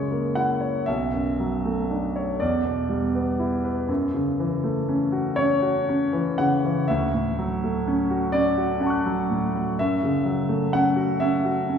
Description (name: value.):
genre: classical, impressionist solo piano.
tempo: 40 BPM (dotted quarters).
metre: 6/8.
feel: uneven beats, rubato.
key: unclear.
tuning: A4 = 445 Hz.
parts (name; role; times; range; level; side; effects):
clear concert grand piano; solo; 0.0-11.8 s; B1 to F#6; -21 LUFS; equal; none.
room: wet scoring stage reverb, RT60 1.7 s.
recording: heard from further back in the room.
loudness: -21 LUFS.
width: side -7 dB against mid.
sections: 0.0-11.8 A section.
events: none.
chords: 0.0 F#9; 0.9 Bm9; 2.4 Em7; 3.9 F#m7; 6.9 Dmaj7; 9.8 F#m7.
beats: | 0.88 2.40 | 3.89 5.37 | 6.89 8.35 | 9.78 11.21.